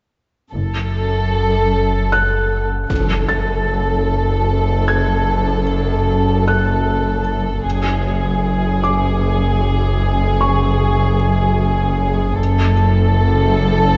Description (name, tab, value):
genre	cinematic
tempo	76 BPM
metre	3/4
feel	straight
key	F# minor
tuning	A4 = 440 Hz
part	muted symphonic violin section	melody	0.5-14.0 s	G#4 to A4	-23 LUFS	equal	none
part	muted symphonic cello section	bass	0.5-14.0 s	F#2	-22 LUFS	equal	none
part	muted symphonic double bass section	bass	0.5-14.0 s	F#1	-24 LUFS	equal	none
part	sub bass with octave	drone	0.5-14.0 s	F#1	-24 LUFS	equal	none
part	felt-muted upright piano	texture	2.1-14.0 s	C#6 to A6	-26 LUFS	equal	none
part	impact	sound effects	2.9-5.3 s	none	-26 LUFS	equal	none
room	moderate scoring stage reverb, RT60 2.1 s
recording	nothing above 7.7 kHz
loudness	-17 LUFS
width	mono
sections	0.5-2.9 A section; 2.9-14.0 B section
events	impact 2.9-5.3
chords	0.5 F#m